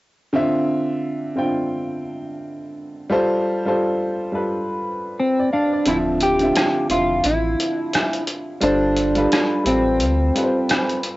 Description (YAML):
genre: lo-fi hip hop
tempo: 87 BPM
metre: 4/4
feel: swing 59% on 16ths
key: D dorian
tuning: A4 = 440 Hz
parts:
  - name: warm upright piano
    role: accompaniment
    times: 0.3-11.2 s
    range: D3 to G5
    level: -21 LUFS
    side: equal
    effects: cassette tape, low-pass filter
  - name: clean electric guitar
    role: melody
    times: 5.2-11.0 s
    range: C4 to G4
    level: -20 LUFS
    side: equal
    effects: analog chorus, low-pass filter, cassette tape, tape echo
  - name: sub bass with octave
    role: bass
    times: 5.9-10.3 s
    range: D1 to D2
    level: -24 LUFS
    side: equal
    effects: transformer saturation
  - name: trip hop sampler-style drum kit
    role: drums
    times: 5.9-11.2 s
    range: hi-hat, rim click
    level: -23 LUFS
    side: equal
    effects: vintage 12-bit sampler grit
room: moderate booth ambience, RT60 0.2 s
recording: home recording on cassette, nothing above 7.8 kHz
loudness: -18 LUFS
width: side -18 dB against mid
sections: 0.3-5.9 A section; 5.9-11.2 B section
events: kick muted 5.9-11.2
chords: 0.3 Dm9; 3.1 G9sus4; 5.9 Dm9; 8.6 G9sus4